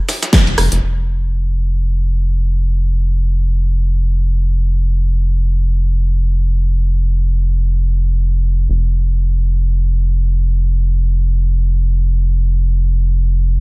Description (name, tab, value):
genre	deep house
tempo	free time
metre	none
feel	none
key	unclear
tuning	A4 = 440 Hz
part	deep house drum kit	drums	0.1-0.8 s	hi-hat, rim click, snare drum	-16 LUFS	equal	low-pass filter on hats, low-pass filter on snare, low-pass filter on room
part	dusty soul sampler-style drum kit	drums	0.1-0.8 s	hi-hat, shaker, snare drum	-23 LUFS	right 1 dB	sidechain pumping on perc, high-pass filter on perc, high-pass filter on snare, sidechain pumping on hats, high-pass filter on hats, high-pass filter on room
part	rubbery square bass	bass	0.5-13.6 s	F1	-14 LUFS	equal	sidechain pumping
room	little or no reverb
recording	none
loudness	-13 LUFS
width	side -29 dB against mid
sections	0.8-13.6 A section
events	band accent 0.3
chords	none